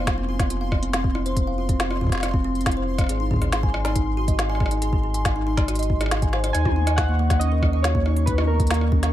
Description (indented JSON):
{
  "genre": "IDM",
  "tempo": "139 BPM",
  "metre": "4/4",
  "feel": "straight",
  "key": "unclear",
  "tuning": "A4 = 440 Hz",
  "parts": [
    { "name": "kalimba", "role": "arpeggios", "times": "0.0-9.1 s", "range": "Bb3 to Ab5", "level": "-27 LUFS", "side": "right 1 dB", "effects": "digital delay" },
    { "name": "warm sub bass", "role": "bass", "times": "0.0-9.1 s", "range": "F1 to Eb2", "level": "-24 LUFS", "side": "equal", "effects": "tube saturation" },
    { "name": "pulsing gated texture", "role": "texture", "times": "0.0-9.1 s", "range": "C6 to Db6", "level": "-35 LUFS", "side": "equal", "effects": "chorus, built-in reverb" },
    { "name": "electronic kick drum", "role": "drums", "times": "0.1-9.0 s", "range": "none", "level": "-23 LUFS", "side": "equal", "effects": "overdrive" },
    { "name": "organic electronic drum kit", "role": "drums", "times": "0.1-9.1 s", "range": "hi-hat, rim click, snare drum, toms", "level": "-27 LUFS", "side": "equal", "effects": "overdrive" },
    { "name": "warbly lo-fi synth keys", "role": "melody", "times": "6.5-9.1 s", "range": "Bb4 to Ab5", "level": "-27 LUFS", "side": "right 1 dB", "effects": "chorus, digital delay" }
  ],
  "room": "light reverb, digital ambience",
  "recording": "none",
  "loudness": "-20 LUFS",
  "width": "side -13 dB against mid",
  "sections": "0.0-9.1 A section",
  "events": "none",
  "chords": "0.0 F5; 3.1 Ab; 6.5 Ebm",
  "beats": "0.07 0.50 0.93 | 1.37 1.80 2.23 2.66 | 3.09 3.52 3.96 4.39 | 4.82 5.25 5.68 6.11 | 6.55 6.98 7.41 7.84 | 8.27 8.70"
}